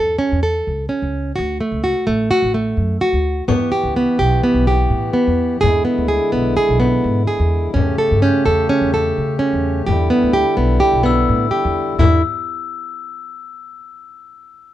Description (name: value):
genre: contemporary instrumental, chamber music in an uneven meter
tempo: 254 BPM (eighths)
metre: 9/8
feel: straight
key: E dorian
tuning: A4 = 440 Hz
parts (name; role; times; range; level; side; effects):
- nylon-string guitar; arpeggios; 0.0-12.2 s; A3 to A4; -17 LUFS; right 2 dB; none
- upright bass; bass; 0.0-12.2 s; A1 to C#3; -19 LUFS; equal; none
- hand-pumped harmonium; sustained chords; 3.5-12.2 s; C#3 to G4; -23 LUFS; left 6 dB; none
- frame drum; percussion; 3.5-12.2 s; none; -22 LUFS; left 6 dB; none
- glockenspiel with brass mallets; texture; 3.5-4.0, 8.2-14.1 s; C#6 to G6; -27 LUFS; left 9 dB; none
room: light reverb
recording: dark, warm production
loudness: -14 LUFS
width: side -13 dB against mid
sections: 0.0-12.0 A section; 12.0-14.1 B section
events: none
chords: 0.0 A/E; 1.4 D; 3.5 Em; 5.6 E7; 7.8 A7/E; 9.9 Em7; 12.0 N.C.